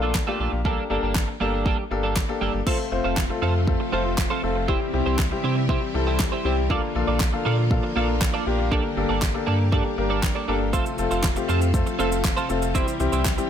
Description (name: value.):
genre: dance-pop.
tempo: 119 BPM.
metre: 4/4.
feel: straight.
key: F major.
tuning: A4 = 440 Hz.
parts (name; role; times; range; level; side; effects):
warm baby grand piano; accompaniment; 0.0-13.5 s; G3 to C5; -26 LUFS; left 5 dB; sidechain pumping.
twelve-string electric guitar; riff; 0.0-13.4 s; G3 to D5; -28 LUFS; right 6 dB; analog chorus.
sub bass with octave; bass; 0.0-13.4 s; F1 to C3; -26 LUFS; equal; sidechain pumping.
pop drum kit; drums; 0.1-13.5 s; crash cymbal, handclaps, kick drum, shaker, snare drum; -25 LUFS; equal; none.
string machine, violins; sustained chords; 2.7-13.5 s; C3 to A4; -30 LUFS; equal; ensemble chorus, sidechain pumping.
room: little or no reverb.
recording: none.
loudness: -21 LUFS.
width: side -9 dB against mid.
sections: 0.0-2.7 A section; 2.7-13.5 B section.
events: none.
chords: 0.0 Bbmaj7; 0.7 Gmadd9; 2.7 F; 4.7 C; 6.7 Bbmaj7; 8.7 Gmadd9; 10.7 F; 12.8 C.